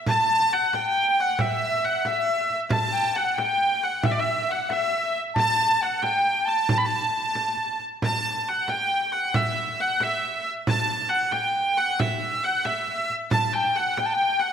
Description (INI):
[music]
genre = medieval dance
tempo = 91 BPM (dotted quarters)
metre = 6/8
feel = straight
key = unclear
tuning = A4 = 442 Hz
[part]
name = clear hurdy-gurdy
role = melody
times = 0.1-14.5 s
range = D5 to B5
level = -24 LUFS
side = right 1 dB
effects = none
[part]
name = tenor recorder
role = second line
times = 0.1-7.8, 13.3-14.5 s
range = E5 to A5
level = -25 LUFS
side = left 2 dB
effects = none
[part]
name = frame drum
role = percussion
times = 0.1-14.2 s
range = none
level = -29 LUFS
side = right 2 dB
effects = none
[sound]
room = wet scoring stage reverb, RT60 1.6 s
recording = none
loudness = -21 LUFS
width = side -8 dB against mid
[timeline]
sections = 0.0-8.0 A section; 8.0-14.5 A section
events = none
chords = none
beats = | 0.06 0.73 | 1.39 2.05 | 2.72 3.38 | 4.04 4.71 | 5.37 6.03 | 6.69 7.36 | 8.02 8.68 | 9.34 10.00 | 10.66 11.33 | 11.99 12.65 | 13.31 13.97